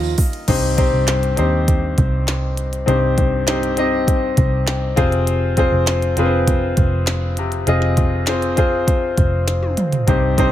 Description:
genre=piano-driven pop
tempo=100 BPM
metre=4/4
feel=straight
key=unclear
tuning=A4 = 440 Hz
part: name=clear concert grand piano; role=accompaniment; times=0.0-10.5 s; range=G2 to G5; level=-19 LUFS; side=left 2 dB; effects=none
part: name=vintage muted picked electric bass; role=bass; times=0.0-10.5 s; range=F1 to Eb2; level=-20 LUFS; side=right 1 dB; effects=none
part: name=glitchy drum kit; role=drums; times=0.2-10.5 s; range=crash cymbal, handclaps, hi-hat, kick drum, ride cymbal, snare drum, toms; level=-19 LUFS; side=right 1 dB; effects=overdrive
room=small room ambience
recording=none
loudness=-15 LUFS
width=side -12 dB against mid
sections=0.5-10.5 A section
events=grand piano fill 4.4-5.3; drum fill 9.5-10.1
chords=0.5 Cm; 5.0 Fm

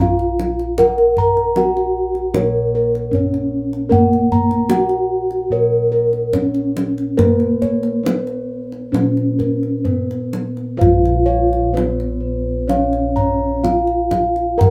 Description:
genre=Javanese gamelan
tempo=63-77 BPM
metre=4/4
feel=straight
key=Bb pelog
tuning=A4 = 441 Hz
part: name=gamelan-type bronze metallophone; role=melody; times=0.0-14.7 s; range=Bb3 to Bb4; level=-20 LUFS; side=equal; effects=none
part: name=gamelan-type bossed gongs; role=arpeggios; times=0.0-14.7 s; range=Bb4 to Bb5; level=-26 LUFS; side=equal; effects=none
part: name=gamelan-type bossed gongs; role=bass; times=0.0-14.7 s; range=Bb1 to Bb4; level=-24 LUFS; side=equal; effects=none
part: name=kendang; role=percussion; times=0.0-14.7 s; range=none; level=-22 LUFS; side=equal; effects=none
part: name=gamelan-type bronze metallophone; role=arpeggios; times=10.8-14.7 s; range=Cb5+35c to Bb5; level=-23 LUFS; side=equal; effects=none
room=moderate studio ambience, RT60 0.5 s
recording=band playing live in one room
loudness=-17 LUFS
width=mono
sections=0.0-10.8 A section; 10.8-14.7 B section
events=none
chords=none

